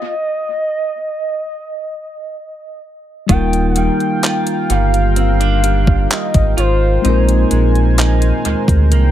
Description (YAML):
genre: contemporary R&B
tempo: 64 BPM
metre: 4/4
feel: straight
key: Eb major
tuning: A4 = 440 Hz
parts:
  - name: gliding portamento lead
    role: melody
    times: 0.0-7.5 s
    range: C5 to G5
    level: -21 LUFS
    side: equal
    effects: chorus, analog delay
  - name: direct-recorded clean electric guitar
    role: arpeggios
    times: 0.0-9.1 s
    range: Bb2 to F4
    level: -22 LUFS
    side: right 8 dB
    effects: lush chorus, analog delay
  - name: mellow tine electric piano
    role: accompaniment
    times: 3.3-9.1 s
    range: G3 to Bb4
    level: -20 LUFS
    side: left 6 dB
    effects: none
  - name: chorused pulse-width pad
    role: sustained chords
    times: 3.3-9.1 s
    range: Eb3 to Ab5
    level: -24 LUFS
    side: equal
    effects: none
  - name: sub bass with octave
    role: bass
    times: 3.3-9.1 s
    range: Eb1 to D2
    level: -14 LUFS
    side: equal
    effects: none
  - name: clean 12-bit digital drum machine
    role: drums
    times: 3.3-9.1 s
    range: handclaps, hi-hat, kick drum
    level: -17 LUFS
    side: equal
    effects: overdrive, analog delay
room: little or no reverb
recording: echo-heavy mix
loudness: -12 LUFS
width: side -12 dB against mid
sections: 0.0-3.3 A section; 3.3-9.1 B section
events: stop 0.0-3.3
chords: 0.0 N.C.; 3.3 Ebmaj9; 7.0 Bb9sus4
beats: 0.48 1.42 2.36 | 3.29 4.23 5.17 6.11 | 7.04 7.98 8.92